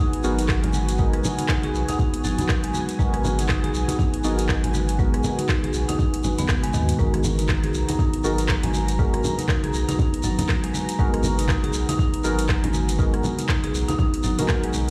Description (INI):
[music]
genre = afro house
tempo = 120 BPM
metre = 4/4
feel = swing 59% on 16ths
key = G# minor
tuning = A4 = 440 Hz
[part]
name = dark analog pad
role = sustained chords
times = 0.0-14.9 s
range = B3 to A#5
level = -34 LUFS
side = equal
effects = chorus, sidechain pumping
[part]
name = marimba with medium mallets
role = arpeggios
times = 0.0-14.9 s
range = D#3 to G#4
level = -30 LUFS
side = equal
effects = sidechain pumping, dub echo
[part]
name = deep mellow chord stab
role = stabs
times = 0.0-14.9 s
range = B3 to A#4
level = -33 LUFS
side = equal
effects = chorus, sidechain pumping, dub echo
[part]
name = afro-pop drum kit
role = drums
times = 0.1-14.7 s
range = handclaps, hi-hat, rim click, toms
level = -32 LUFS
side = equal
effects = overdrive, studio reverb
[part]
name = round analog bass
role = bass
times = 0.2-14.9 s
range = G#1 to D#2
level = -28 LUFS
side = equal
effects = sidechain pumping
[part]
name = congas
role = percussion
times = 0.2-14.9 s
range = none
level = -32 LUFS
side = equal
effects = none
[part]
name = shekere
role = percussion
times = 0.2-14.9 s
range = none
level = -38 LUFS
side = equal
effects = none
[part]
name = electronic kick drum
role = drums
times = 0.5-14.6 s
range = none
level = -25 LUFS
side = equal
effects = studio reverb
[sound]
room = light reverb, digital ambience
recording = played on a big sound system in a bare room, stone room reverb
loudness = -22 LUFS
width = mono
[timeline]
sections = 0.0-14.9 A section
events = drum fill 6.2-7.0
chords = 0.0 G#m9